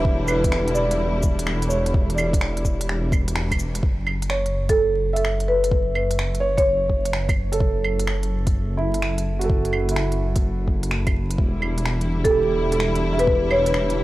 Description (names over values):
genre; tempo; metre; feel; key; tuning
future garage; 127 BPM; 4/4; swing 66% on 16ths; F# phrygian; A4 = 439 Hz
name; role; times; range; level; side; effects
felt-muted upright piano; accompaniment; 0.0-14.0 s; E4 to E5; -27 LUFS; right 2 dB; vintage 12-bit sampler grit, sidechain pumping, analog delay
rich symphonic string section; sustained chords; 0.0-3.8, 11.4-14.0 s; D3 to E4; -29 LUFS; left 1 dB; sidechain pumping
dark detuned saw bass; bass; 0.0-14.0 s; E1 to F#1; -24 LUFS; equal; sidechain pumping
electronic kick drum; drums; 0.0-13.4 s; none; -22 LUFS; equal; studio reverb
organic electronic drum kit; drums; 0.3-14.0 s; cabasa, claves, finger snaps, hi-hat; -29 LUFS; right 1 dB; studio reverb
marimba with medium mallets; melody; 4.7-7.1, 12.2-13.8 s; A4 to C#5; -22 LUFS; equal; analog delay
room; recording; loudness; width
studio reverb; dry, gritty hardware recording, vinyl crackle; -19 LUFS; side -16 dB against mid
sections
0.0-3.8 A section; 3.8-14.0 B section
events
band accent 3.4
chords
0.0 Em7; 3.8 F#m7; 11.4 Em7